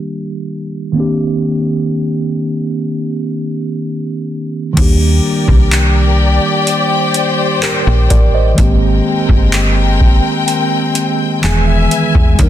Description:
contemporary R&B; 63 BPM; 4/4; straight; Eb major; A4 = 441 Hz
mellow tine electric piano; accompaniment; 0.0-12.5 s; Eb3 to G#5; -16 LUFS; right 2 dB; slow stereo tremolo
warm studio string section; sustained chords; 4.8-12.5 s; Ab3 to G#5; -17 LUFS; left 5 dB; sidechain pumping
slap-like FM bass; bass; 4.8-12.5 s; E1 to E2; -13 LUFS; equal
booming analog drum machine; drums; 4.8-12.5 s; crash cymbal, handclaps, hi-hat, kick drum; -13 LUFS; equal
little or no reverb; dense, heavily limited modern master, low-pass filter; -11 LUFS; side -11 dB against mid
0.0-4.8 A section; 4.8-12.5 B section
filter sweep 0.0-4.8; tine electric piano fill 11.0-12.4
0.0 Ebmaj7; 1.0 Cm9/Eb; 4.8 Ebmaj7; 8.6 Abmaj9; 11.4 Emaj7
0.01 | 0.96 1.91 2.87 3.82 | 4.77 5.72 6.67 7.63 | 8.58 9.53 10.48 11.44 | 12.39

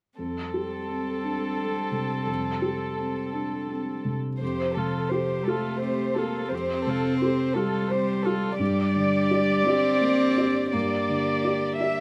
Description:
neoclassical piano and strings; 57 BPM (dotted quarters); 6/8; rubato; A4 = 440 Hz
warm chamber violin section; melody; 0.2-12.0 s; A4 to E5; -31 LUFS; equal; slapback echo
rich cello; second line; 0.2-12.0 s; F3 to C4; -31 LUFS; equal; slapback echo
felt-muted upright piano; accompaniment; 0.2-12.0 s; F2 to D5; -31 LUFS; equal
warm viola; accompaniment; 0.2-12.0 s; C4 to G4; -36 LUFS; equal
light reverb; recorded outdoors, with no room sound; -26 LUFS; mono
0.2-4.4 A section; 4.4-12.0 B section
0.2 Fadd9; 8.6 Gm
| 0.18 1.24 | 2.28 3.34 | 4.41 5.47 | 6.52 7.56 | 8.60 9.67 | 10.74 11.80

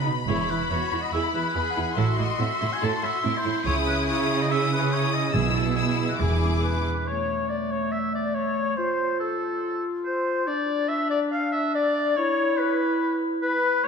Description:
cinematic; 142 BPM; 4/4; straight; E major; A4 = 439 Hz
rich symphonic violin section; melody; 0.0-6.9 s; B5 to E6; -30 LUFS; left 5 dB
clear symphonic violin section; second line; 0.0-6.9 s; C#4 to G#4; -33 LUFS; left 3 dB
rich symphonic cello section; bass; 0.0-6.9 s; E2 to C#3; -28 LUFS; right 4 dB
warm symphonic viola section; accompaniment; 0.1-6.9 s; B3 to A4; -31 LUFS; right 3 dB
warm oboe; second line; 0.3-13.9 s; E4 to A5; -28 LUFS; left 1 dB
warm studio double bass section; bass; 0.3-6.6 s; E1 to C#2; -30 LUFS; right 4 dB
timpani; percussion; 5.3-6.8 s; E2 to B2; -28 LUFS; right 1 dB
silver concert flute; second line; 6.6-13.9 s; A4 to F5; -28 LUFS; left 3 dB
warm clarinet; second line; 7.1-13.9 s; A3 to F4; -28 LUFS; left 1 dB
wet concert hall reverb, RT60 2.2 s; -22 LUFS; side -6 dB against mid
0.0-7.1 A section; 7.1-13.9 B section
0.3 E; 2.0 Am; 3.7 C#madd9; 5.3 E/B; 6.2 E7; 7.1 N.C.
| 0.28 0.71 1.13 1.56 | 1.98 2.40 2.83 3.25 | 3.67 4.09 4.50 4.92 | 5.34 5.77 6.21 6.64 | 7.08 7.51 7.94 8.36 | 8.79 9.21 9.63 10.06 | 10.48 10.90 11.32 11.74 | 12.17 12.59 13.01 13.43 | 13.85

